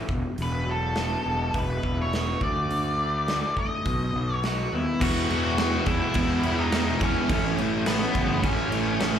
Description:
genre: quiet-loud alternative rock.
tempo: 104 BPM.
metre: 4/4.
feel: straight.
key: E major.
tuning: A4 = 442 Hz.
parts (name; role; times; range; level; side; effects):
electric guitar through a small old amp; arpeggios; 0.0-5.0 s; E2 to F#4; -33 LUFS; left 1 dB; wide subtle chorus.
fuzz fingered electric bass; bass; 0.1-9.2 s; E1 to E2; -28 LUFS; equal; overdrive.
big rock drum kit; drums; 0.1-9.1 s; crash cymbal, hi-hat, kick drum, snare drum; -29 LUFS; equal; none.
octave-fuzz lead guitar; melody; 0.4-9.2 s; B3 to F#5; -29 LUFS; left 1 dB; distortion, slapback echo.
thick fuzz guitar; riff; 5.0-9.2 s; A2 to E4; -30 LUFS; right 1 dB; distortion.
thick fuzz guitar; riff; 5.0-9.2 s; A2 to E4; -29 LUFS; equal; distortion.
room: little or no reverb.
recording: live gig heard through the venue's PA, club reverb.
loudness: -23 LUFS.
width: side -8 dB against mid.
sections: 0.0-5.0 A section; 5.0-9.2 B section.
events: none.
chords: 0.1 Eadd9; 2.4 D5; 3.9 B; 5.0 Eadd9; 7.3 A.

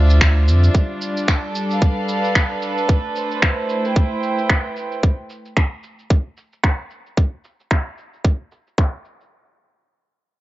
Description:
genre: organic downtempo.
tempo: 112 BPM.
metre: 4/4.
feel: swing 58% on 16ths.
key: unclear.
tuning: A4 = 440 Hz.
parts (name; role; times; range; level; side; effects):
bright chamber string section; sustained chords; 0.0-5.0 s; D3 to G5; -22 LUFS; right 1 dB; sidechain pumping, low-pass filter.
warm sub bass; bass; 0.0-0.7 s; D2 to F2; -12 LUFS; equal; sidechain pumping.
electronic cabasa and finger snaps; drums; 0.1-9.3 s; none; -21 LUFS; right 1 dB; low-pass filter on snare, low-pass filter on perc, low-pass filter on room.
electronic kick drum; drums; 0.2-8.9 s; none; -16 LUFS; equal; none.
room: little or no reverb.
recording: dry, gritty hardware recording, nothing above 7.6 kHz.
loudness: -17 LUFS.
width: side -16 dB against mid.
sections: 0.0-9.3 A section.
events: filter sweep on drum 0.0-9.3.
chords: 0.0 Dm9; 0.7 G9; 2.9 Am9; 5.0 N.C..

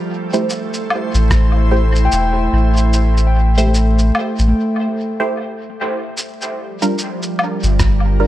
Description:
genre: ambient dub.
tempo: 74 BPM.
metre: 4/4.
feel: swing 60% on 16ths.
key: unclear.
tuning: A4 = 440 Hz.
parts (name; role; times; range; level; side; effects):
soft additive organ-like pad; sustained chords; 0.0-8.3 s; F3 to G5; -23 LUFS; right 2 dB; ensemble chorus, built-in reverb.
filtered dub chord stab; stabs; 0.3-8.3 s; G3 to C5; -22 LUFS; right 2 dB; phaser, wide subtle chorus, dub echo.
electronic cabasa, woodblock and rim click; drums; 0.3-8.0 s; none; -24 LUFS; equal; dub echo.
soft dub sub bass; bass; 1.1-8.3 s; E1 to A1; -13 LUFS; equal; none.
electronic kick drum; drums; 1.3-1.5, 7.8-8.0 s; none; -17 LUFS; equal; none.
handpan; arpeggios; 2.0-4.6 s; A3 to G5; -22 LUFS; left 1 dB; vintage 12-bit sampler grit, tape echo.
room: light reverb.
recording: none.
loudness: -14 LUFS.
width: side -14 dB against mid.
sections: 0.0-6.2 A section; 6.2-8.3 B section.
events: filter sweep on synth stab 0.0-6.2; break 4.6-6.2.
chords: 0.0 Am7; 6.2 Gm7.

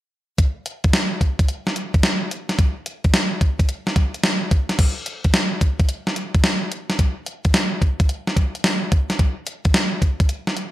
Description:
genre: R&B.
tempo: 109 BPM.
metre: 4/4.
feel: swing 66% on 16ths.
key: none.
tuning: none.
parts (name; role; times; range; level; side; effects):
crisp 8-bit digital drum machine; drums; 0.4-10.7 s; crash cymbal, hi-hat, kick drum, snare drum; -17 LUFS; equal; gated reverb.
room: moderate plate reverb, RT60 1.1 s.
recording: bright 1980s-style digital production.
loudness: -18 LUFS.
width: side -15 dB against mid.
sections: 0.4-4.8 A section; 4.8-10.7 B section.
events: none.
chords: none.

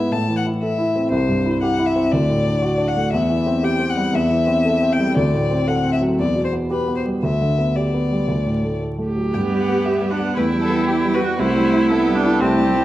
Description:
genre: quick classical-period movement for piano quintet.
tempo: 117 BPM.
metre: 4/4.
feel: straight.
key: G major.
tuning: A4 = 440 Hz.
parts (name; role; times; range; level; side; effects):
rich violin; melody; 0.0-12.8 s; B4 to A5; -24 LUFS; left 4 dB; none.
warm grand piano; accompaniment; 0.0-12.8 s; C2 to B4; -18 LUFS; equal; none.
clear viola; accompaniment; 9.1-12.8 s; C4 to G4; -21 LUFS; right 2 dB; none.
rich cello; second line; 9.3-12.8 s; G3 to B3; -24 LUFS; right 2 dB; none.
rich violin; second line; 10.4-12.8 s; G4 to C5; -24 LUFS; left 2 dB; none.
room: wet recital hall reverb, RT60 1.4 s.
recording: dark, warm production, vinyl crackle.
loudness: -16 LUFS.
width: side -14 dB against mid.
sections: 0.0-9.3 A section; 9.3-12.8 B section.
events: none.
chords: 0.1 Am; 1.1 C; 2.1 D; 3.1 C/E; 4.1 Am7/E; 5.2 D7; 6.2 Em; 7.2 G/D; 8.3 D; 9.3 G; 10.4 Em; 11.4 Am7/C.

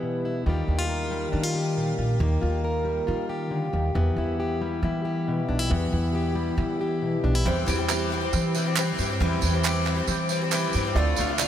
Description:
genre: indie folk with a building arrangement.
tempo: 137 BPM.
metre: 4/4.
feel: straight.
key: unclear.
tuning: A4 = 441 Hz.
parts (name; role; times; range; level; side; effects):
fingerpicked plugged-in steel-string acoustic guitar; accompaniment; 0.0-9.2 s; Bb2 to Bb4; -27 LUFS; left 2 dB; none.
upright bass; bass; 0.5-11.5 s; Bb1 to E3; -26 LUFS; equal; none.
dark grand piano; accompaniment; 7.5-11.5 s; D2 to D5; -30 LUFS; right 6 dB; lush chorus.
picked twelve-string acoustic guitar; accompaniment; 7.5-11.5 s; D3 to G4; -27 LUFS; left 6 dB; none.
tambourine; percussion; 7.7-11.5 s; none; -33 LUFS; right 11 dB; none.
group handclap; percussion; 7.9-11.5 s; none; -32 LUFS; right 7 dB; none.
room: moderate huge ambient reverb, RT60 5.8 s.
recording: dreamy mix soaked in reverb.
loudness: -23 LUFS.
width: side -10 dB against mid.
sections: 0.5-11.5 A section.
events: build-up 0.5-11.5.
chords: 0.5 Ebadd9; 4.0 Em; 7.5 C/E; 11.0 Dm.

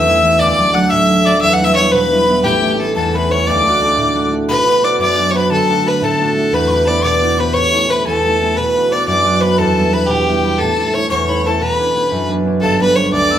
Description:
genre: celtic folk, Celtic jig.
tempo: 118 BPM (dotted quarters).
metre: 6/8.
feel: straight.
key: D major, B minor from 4.5 s.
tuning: A4 = 440 Hz.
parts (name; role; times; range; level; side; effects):
clear fiddle; melody; 0.0-13.4 s; G4 to F#5; -16 LUFS; equal; none.
breathy bright mid whistle; second line; 0.0-13.4 s; G5 to F#6; -18 LUFS; left 3 dB; none.
concert harp; accompaniment; 0.0-13.4 s; D1 to G4; -16 LUFS; right 1 dB; none.
room: wet large studio reverb, RT60 0.8 s.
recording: band playing live in one room.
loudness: -12 LUFS.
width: side -10 dB against mid.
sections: 0.0-4.5 A section; 4.5-12.6 B section.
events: none.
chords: 0.4 D; 1.4 Em; 2.4 A; 3.5 D; 4.5 Bm; 5.5 D; 6.5 Em; 7.5 A; 8.6 Bm; 9.6 Em; 10.6 A; 11.6 Bmadd9; 12.6 G.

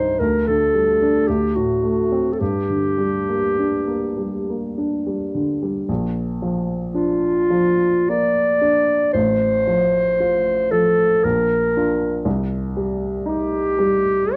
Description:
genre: classical, romantic duo for clarinet and grand piano.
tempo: 51-60 BPM.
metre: 3/4.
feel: rubato.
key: G minor, Bb major from 5.9 s.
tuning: A4 = 441 Hz.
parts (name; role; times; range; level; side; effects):
clear clarinet; melody; 0.0-14.4 s; F4 to D5; -20 LUFS; equal; none.
warm baby grand piano; accompaniment; 0.0-14.4 s; A1 to F4; -24 LUFS; equal; none.
room: moderate studio reverb, RT60 0.7 s.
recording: worn, warbling old tape, cassette tape, warbly pitch drift, nothing above 10.5 kHz.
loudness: -20 LUFS.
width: mono.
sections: 0.0-5.9 A section; 5.9-14.4 B section.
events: none.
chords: 0.2 G5/D; 1.3 D7; 2.4 Gm; 5.9 Bb; 9.2 F/A; 11.2 Bb; 12.3 Cm.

